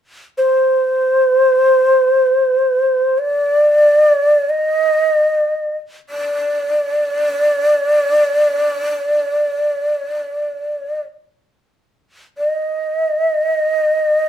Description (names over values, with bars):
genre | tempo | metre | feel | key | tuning
japanese traditional, Japanese chamber music | free time | none | none | unclear | A4 = 436 Hz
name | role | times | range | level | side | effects
breathy mellow shakuhachi | solo | 0.4-14.3 s | C5 to Eb5 | -13 LUFS | equal | none
room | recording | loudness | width
moderate studio reverb, RT60 0.6 s | minimal, uncompressed stereo recording | -13 LUFS | side -10 dB against mid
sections
0.0-14.3 A section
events
none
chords
none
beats
free time